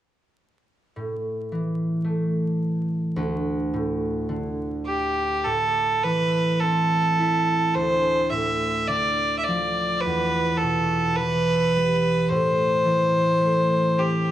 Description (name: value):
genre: celtic folk, Celtic slow air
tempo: 53 BPM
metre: 4/4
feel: rubato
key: A minor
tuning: A4 = 442 Hz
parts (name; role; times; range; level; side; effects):
- concert harp; accompaniment; 1.0-14.3 s; D2 to E4; -24 LUFS; equal; none
- warm fiddle; melody; 4.9-14.3 s; G4 to E5; -21 LUFS; right 1 dB; none
room: wet studio reverb, RT60 0.6 s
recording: vinyl crackle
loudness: -20 LUFS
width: side -12 dB against mid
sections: 0.9-5.4 A section; 5.4-14.3 B section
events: none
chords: 0.9 A5; 3.2 D5; 5.4 Am; 7.7 Dm; 10.0 Em; 12.3 Am